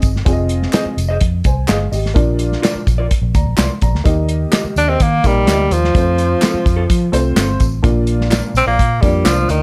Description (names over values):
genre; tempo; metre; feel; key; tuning
uptempo 1960s-style soul; 127 BPM; 4/4; straight; unclear; A4 = 440 Hz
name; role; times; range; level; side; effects
dark upright piano; accompaniment; 0.0-9.5 s; Bb2 to C6; -23 LUFS; equal; none
vintage muted fingered electric bass; bass; 0.0-9.6 s; F1 to F3; -20 LUFS; equal; none
warm soul drum kit; drums; 0.0-9.6 s; hi-hat, kick drum, snare drum; -19 LUFS; equal; none
tambourine and handclaps; percussion; 0.0-9.6 s; none; -30 LUFS; equal; none
electric guitar through a small old amp; stabs; 0.7-9.4 s; C4 to Eb5; -27 LUFS; equal; none
breathy tenor saxophone; melody; 4.8-9.6 s; Eb3 to D4; -18 LUFS; equal; none
room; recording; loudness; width
light reverb; dark, warm production; -15 LUFS; mono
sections
0.0-9.6 A section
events
none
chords
0.0 Fm7; 2.2 Bb; 4.1 Eb; 5.9 F; 7.8 Bb